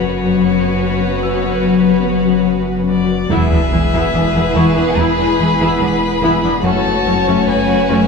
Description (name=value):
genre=cinematic, hybrid orchestral and electronic film score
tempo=72 BPM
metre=4/4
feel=straight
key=unclear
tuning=A4 = 438 Hz
part: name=rich violin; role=melody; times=0.0-8.1 s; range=C#5 to B5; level=-22 LUFS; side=left 5 dB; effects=tape echo
part: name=rich studio violin section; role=second line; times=0.0-8.1 s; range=F#4 to C#5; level=-22 LUFS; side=right 1 dB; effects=none
part: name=rich symphonic viola section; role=accompaniment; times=0.0-8.1 s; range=A3 to E4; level=-22 LUFS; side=equal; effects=none
part: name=ethereal airy pad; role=sustained chords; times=0.0-8.1 s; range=F#3 to C#5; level=-18 LUFS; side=left 3 dB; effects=ensemble chorus, built-in reverb
part: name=rich symphonic cello section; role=bass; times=0.0-8.0 s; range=E2 to F#2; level=-19 LUFS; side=left 2 dB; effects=none
part: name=saturated sub bass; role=bass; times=0.0-8.1 s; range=E1 to F#1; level=-26 LUFS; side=left 1 dB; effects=none
part: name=clear baby grand piano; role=texture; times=0.0-8.1 s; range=F#4 to E6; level=-29 LUFS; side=left 2 dB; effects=tape echo
part: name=mellow French horn section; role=sustained chords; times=3.3-8.1 s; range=F#3 to C#4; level=-23 LUFS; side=left 4 dB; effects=none
part: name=rich symphonic double bass section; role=bass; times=3.3-8.0 s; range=E1 to F#1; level=-21 LUFS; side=right 1 dB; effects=none
part: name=sub drop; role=sound effects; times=3.3-6.6 s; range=none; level=-22 LUFS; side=equal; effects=none
part: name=rich symphonic violin section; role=melody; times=5.0-8.1 s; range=G#4 to C#5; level=-24 LUFS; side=left 2 dB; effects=none
room=wet scoring stage reverb, RT60 1.7 s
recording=none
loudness=-12 LUFS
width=side -4 dB against mid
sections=0.0-3.3 A section; 3.3-8.1 B section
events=impact 3.3-6.6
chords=0.0 F#sus4; 3.3 E; 6.6 F#m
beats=0.80 1.64 2.47 | 3.30 4.14 4.97 5.80 | 6.64 7.47